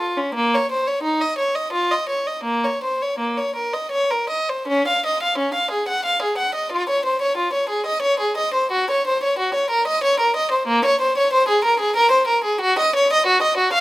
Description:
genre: classical, baroque-style suite movement for unaccompanied violin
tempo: 76-96 BPM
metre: 3/4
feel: rubato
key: Bb minor, Db major from 4.7 s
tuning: A4 = 441 Hz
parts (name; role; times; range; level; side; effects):
- warm violin; solo; 0.0-13.8 s; Bb3 to Gb5; -17 LUFS; equal; none
room: light reverb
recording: close, detailed microphones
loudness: -17 LUFS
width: side -17 dB against mid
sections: 0.0-4.7 A section; 4.7-13.8 A section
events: none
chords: none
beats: | 0.34 1.03 1.72 | 2.45 3.19 3.91 | 4.68 5.38 6.05 | 6.71 7.37 8.03 | 8.71 9.38 10.03 | 10.68 11.32 11.95 | 12.61 13.26

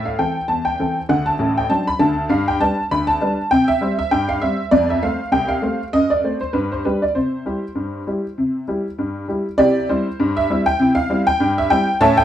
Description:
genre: ragtime piano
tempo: 99 BPM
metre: 2/4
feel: swing 56% on 16ths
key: C major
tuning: A4 = 441 Hz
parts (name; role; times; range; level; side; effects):
- honky-tonk upright piano; solo; 0.0-12.2 s; A1 to B5; -16 LUFS; equal; none
room: wet studio reverb, RT60 0.6 s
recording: heard from further back in the room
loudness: -16 LUFS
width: side -11 dB against mid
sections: 0.0-9.6 A section; 9.6-12.2 B section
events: none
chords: 0.0 Am; 1.1 D7; 2.3 G; 3.5 C5; 4.7 F; 5.9 F#dim; 6.5 G5; 7.1 C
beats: 0.49 | 1.09 1.70 | 2.31 2.91 | 3.52 4.12 | 4.72 5.33 | 5.93 6.54 | 7.14 7.75 | 8.36 8.97 | 9.58 10.19 | 10.79 11.40 | 12.00

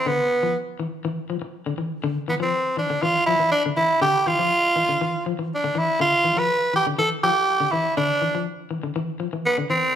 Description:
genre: afrobeat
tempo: 121 BPM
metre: 4/4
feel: straight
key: unclear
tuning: A4 = 437 Hz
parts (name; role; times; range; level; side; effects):
- raspy tenor saxophone; melody; 0.0-10.0 s; B3 to B4; -20 LUFS; right 1 dB; none
- electric guitar at the edge of break-up; arpeggios; 0.1-9.8 s; D3 to F3; -27 LUFS; left 5 dB; tremolo
room: moderate large studio reverb, RT60 1.3 s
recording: band playing live in one room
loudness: -20 LUFS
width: side -9 dB against mid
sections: 0.0-10.0 A section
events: none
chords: 0.0 Dmadd9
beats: | 0.06 0.55 1.05 1.54 | 2.04 2.53 3.03 3.52 | 4.02 4.51 5.01 5.50 | 6.00 6.49 6.98 7.48 | 7.97 8.46 8.96 9.45 | 9.95

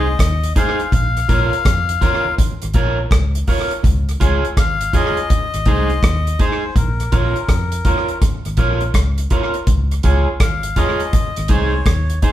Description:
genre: roots reggae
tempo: 82 BPM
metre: 4/4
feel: swing 64% on 16ths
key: unclear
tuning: A4 = 440 Hz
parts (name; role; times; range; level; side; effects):
- melodica; melody; 0.0-12.3 s; Bb4 to F5; -23 LUFS; left 5 dB; none
- electric guitar at the edge of break-up; accompaniment; 0.0-12.3 s; Eb4 to Db5; -21 LUFS; right 2 dB; spring reverb
- vintage muted fingered electric bass; bass; 0.0-12.2 s; Ab1 to F2; -19 LUFS; equal; none
- damped 70s drum kit; drums; 0.2-12.3 s; hi-hat, kick drum, rim click; -17 LUFS; equal; none
- congas; percussion; 0.6-12.3 s; none; -28 LUFS; right 2 dB; none
room: wet studio reverb, RT60 0.7 s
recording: band playing live in one room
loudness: -14 LUFS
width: side -13 dB against mid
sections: 0.0-12.3 A section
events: none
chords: 0.0 Ab; 0.9 Bbm; 3.8 Db; 5.3 Ab; 6.8 Bbm; 9.7 Db; 11.1 Ab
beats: 0.19 | 0.92 1.65 2.38 3.11 | 3.84 4.57 5.30 6.03 | 6.76 7.49 8.21 8.95 | 9.67 10.40 11.13 11.86

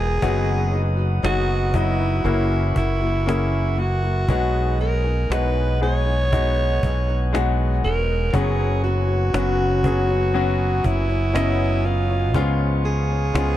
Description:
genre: pop ballad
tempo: 60 BPM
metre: 4/4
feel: straight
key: B major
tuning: A4 = 440 Hz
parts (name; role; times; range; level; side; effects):
- growling alto saxophone; melody; 0.0-13.6 s; E4 to C#5; -25 LUFS; right 2 dB; none
- clear concert grand piano; accompaniment; 0.0-13.6 s; G#2 to D#5; -26 LUFS; left 3 dB; none
- mellow tonewheel organ; sustained chords; 0.0-13.6 s; B3 to D#6; -33 LUFS; right 3 dB; stopped rotary speaker
- nylon-string guitar; arpeggios; 0.0-13.6 s; F#2 to A#4; -31 LUFS; left 9 dB; none
- modern bright fingered electric bass; bass; 0.0-13.6 s; E1 to C#2; -21 LUFS; equal; none
- cajon; drums; 0.2-13.6 s; none; -25 LUFS; equal; none
room: small room ambience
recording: dark, warm production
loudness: -18 LUFS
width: side -13 dB against mid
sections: 0.0-13.6 A section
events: none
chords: 0.2 B/F#; 2.2 F#7; 4.3 B6; 8.3 F#sus4; 12.3 C#7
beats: | 0.22 1.23 2.25 3.27 | 4.29 5.30 6.32 7.33 | 8.34 9.34 10.35 11.35 | 12.35 13.35

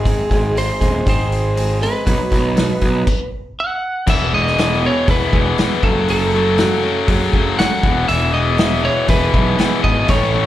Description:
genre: quiet-loud alternative rock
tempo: 120 BPM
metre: 4/4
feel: straight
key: unclear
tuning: A4 = 440 Hz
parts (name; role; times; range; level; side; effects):
- lightly driven lead guitar; melody; 0.0-10.5 s; G#4 to F#5; -20 LUFS; right 1 dB; slapback echo
- picked steel-string acoustic guitar; arpeggios; 0.0-10.5 s; E2 to B4; -22 LUFS; right 3 dB; none
- fuzz picked electric bass; bass; 0.0-10.5 s; D#1 to B1; -20 LUFS; right 1 dB; overdrive
- loose indie drum kit; drums; 0.1-10.2 s; crash cymbal, hi-hat, kick drum, snare drum; -19 LUFS; equal; none
- tight distorted guitar; riff; 4.1-10.5 s; E2 to A3; -20 LUFS; left 10 dB; distortion, slapback echo
room: little or no reverb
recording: live gig heard through the venue's PA, club reverb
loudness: -14 LUFS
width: side -13 dB against mid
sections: 0.0-4.1 A section; 4.1-10.5 B section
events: stop 3.1-4.1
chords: 0.0 G#; 2.1 B; 4.1 E; 5.8 F#m; 7.8 E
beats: | 0.04 0.55 1.05 1.56 | 2.06 2.57 3.07 3.58 | 4.08 4.58 5.08 5.59 | 6.09 6.59 7.09 7.59 | 8.09 8.59 9.09 9.59 | 10.08

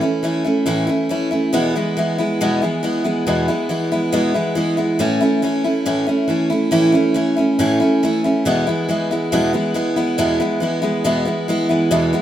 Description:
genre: country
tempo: 139 BPM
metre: 4/4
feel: straight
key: unclear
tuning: A4 = 440 Hz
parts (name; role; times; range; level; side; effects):
- picked steel-string acoustic guitar; solo; 0.0-12.2 s; E2 to E4; -16 LUFS; equal; none
room: moderate plate reverb, RT60 2.8 s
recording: minimal, uncompressed stereo recording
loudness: -16 LUFS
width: side -11 dB against mid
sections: 0.0-11.9 A section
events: none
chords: 0.0 A; 1.5 E; 5.0 A; 8.5 E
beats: 0.23 0.66 1.10 | 1.53 1.96 2.40 2.83 | 3.26 3.69 4.13 4.56 | 4.99 5.43 5.86 6.29 | 6.72 7.16 7.59 8.02 | 8.46 8.89 9.32 9.76 | 10.19 10.62 11.05 11.49 | 11.92

